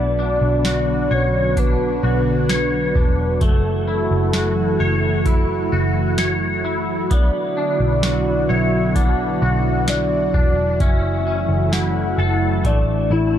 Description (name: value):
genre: dream pop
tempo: 65 BPM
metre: 4/4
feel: straight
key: B minor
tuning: A4 = 436 Hz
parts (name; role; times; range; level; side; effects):
- soft octave-layered synth lead; melody; 0.0-13.4 s; E4 to F#5; -23 LUFS; left 1 dB; chorus, tremolo, digital delay
- lush unison pad; sustained chords; 0.0-13.4 s; D3 to F#4; -22 LUFS; right 1 dB; chorus
- twangy electric guitar; arpeggios; 0.0-13.4 s; A3 to C#5; -26 LUFS; left 3 dB; ensemble chorus, digital delay
- vintage muted picked electric bass; bass; 0.0-13.4 s; E1 to B1; -21 LUFS; equal; none
- booming analog drum machine; drums; 0.6-12.9 s; hi-hat, kick drum, snare drum; -18 LUFS; equal; none
room: light reverb, digital ambience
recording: dark, warm production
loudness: -16 LUFS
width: side -10 dB against mid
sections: 0.0-13.4 A section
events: none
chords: 0.0 Bmadd9; 3.4 F#m7; 7.1 Bmadd9; 10.8 F#m7; 12.6 Asus4